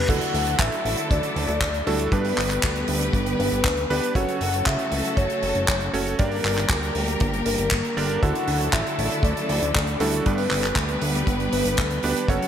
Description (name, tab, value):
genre	italo disco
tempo	118 BPM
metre	4/4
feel	straight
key	unclear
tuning	A4 = 441 Hz
part	soft octave-layered synth lead	melody	0.0-12.5 s	A4 to F#5	-27 LUFS	left 2 dB	chorus, digital delay, shimmer reverb
part	rich studio string section	sustained chords	0.0-12.5 s	C#3 to B4	-28 LUFS	equal	vintage 12-bit sampler grit, shimmer reverb
part	clear electric grand piano	stabs	0.0-12.5 s	G2 to D5	-29 LUFS	right 4 dB	shimmer reverb
part	fat analog bass	bass	0.1-12.4 s	F#1 to G2	-27 LUFS	equal	none
part	damped 70s drum kit	drums	0.1-12.5 s	crash cymbal, handclaps, hi-hat	-27 LUFS	right 1 dB	studio reverb, gated reverb
part	kick drum	drums	0.1-12.4 s	none	-23 LUFS	equal	studio reverb
room	moderate plate reverb, RT60 2.0 s, studio ambience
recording	bright 1980s-style digital production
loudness	-20 LUFS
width	side -9 dB against mid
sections	0.1-12.5 A section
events	none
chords	0.1 Dadd9; 2.1 G; 4.2 F#m; 6.2 Gm; 8.2 Dadd9; 10.3 G